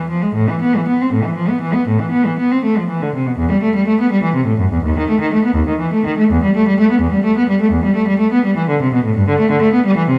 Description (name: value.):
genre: classical, baroque-style suite movement for unaccompanied cello.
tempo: 74-86 BPM (dotted quarters).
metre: 12/8.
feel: rubato.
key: A minor, E minor from 3.4 s.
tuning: A4 = 440 Hz.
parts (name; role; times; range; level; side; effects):
warm cello; solo; 0.0-10.2 s; D#2 to C4; -15 LUFS; equal; none.
room: moderate scoring stage reverb, RT60 1.7 s.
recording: none.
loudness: -15 LUFS.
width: mono.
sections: 0.0-3.4 A section; 3.4-10.2 A section.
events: none.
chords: none.